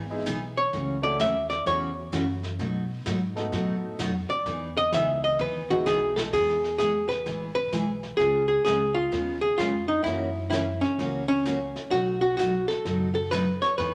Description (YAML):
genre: country, western swing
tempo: 129 BPM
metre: 4/4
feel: swing 65% on 8ths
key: E major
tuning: A4 = 440 Hz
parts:
  - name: picked steel-string acoustic guitar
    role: accompaniment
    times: 0.0-13.9 s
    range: B2 to G#4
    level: -34 LUFS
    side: equal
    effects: none
  - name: upright bass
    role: bass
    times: 0.0-13.9 s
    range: F#1 to B2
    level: -38 LUFS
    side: equal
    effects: none
  - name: warm upright piano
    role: accompaniment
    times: 0.1-6.3 s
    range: G#3 to A4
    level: -38 LUFS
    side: equal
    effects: none
  - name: vintage brush drum kit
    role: drums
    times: 0.3-13.9 s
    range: brushed snare drum, crash cymbal, hi-hat, kick drum, snare drum, toms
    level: -40 LUFS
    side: equal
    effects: none
  - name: archtop guitar, miked and amplified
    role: melody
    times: 0.6-13.9 s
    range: C#4 to E5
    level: -27 LUFS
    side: equal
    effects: none
room: wet large studio reverb, RT60 1.5 s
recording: none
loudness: -26 LUFS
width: mono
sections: 0.0-6.3 A section; 6.3-13.9 B section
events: hollow-body jazz guitar solo 0.0-6.3; drum fill 5.4-6.3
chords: 0.0 Emaj7; 0.7 A6; 2.6 B7; 4.5 Emaj7; 6.3 E; 8.2 C#7; 10.1 F#7; 11.9 B7